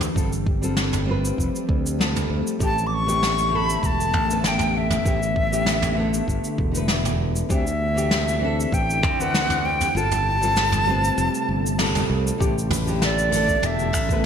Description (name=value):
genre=sunset chillout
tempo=98 BPM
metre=4/4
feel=straight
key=unclear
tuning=A4 = 442 Hz
part: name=nylon-string guitar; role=accompaniment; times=0.0-14.3 s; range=D3 to B4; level=-28 LUFS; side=left 1 dB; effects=auto-pan, vintage 12-bit sampler grit, digital delay
part: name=ethereal airy pad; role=sustained chords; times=0.0-14.3 s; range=C3 to G4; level=-30 LUFS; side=left 1 dB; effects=ensemble chorus, built-in reverb
part: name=modern bright fingered electric bass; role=bass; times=0.0-14.3 s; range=E1 to D2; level=-25 LUFS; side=equal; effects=none
part: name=soft brush drum kit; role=drums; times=0.0-14.2 s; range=cabasa, hi-hat, snare drum, toms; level=-26 LUFS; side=equal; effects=gated reverb
part: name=electronic kick drum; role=drums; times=0.2-14.2 s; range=none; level=-25 LUFS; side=equal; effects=none
part: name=bright silver concert flute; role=melody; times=2.6-14.3 s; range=D5 to D6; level=-23 LUFS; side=equal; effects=digital delay
part: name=concert harp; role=arpeggios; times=12.4-14.3 s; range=G4 to A5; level=-33 LUFS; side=left 2 dB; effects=digital delay
part: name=wind-like tuned noise texture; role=texture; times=12.8-14.3 s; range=A4 to A5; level=-36 LUFS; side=right 1 dB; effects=built-in reverb
room=moderate plate reverb, RT60 1.8 s, small room ambience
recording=bright 1980s-style digital production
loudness=-19 LUFS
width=side -8 dB against mid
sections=0.0-12.4 A section; 12.4-14.3 B section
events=kick drops out 10.0-12.4; band accent 11.8-12.1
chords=0.2 G9sus4; 2.6 A9sus4; 7.5 D9sus4; 10.0 G9sus4; 12.4 A9sus4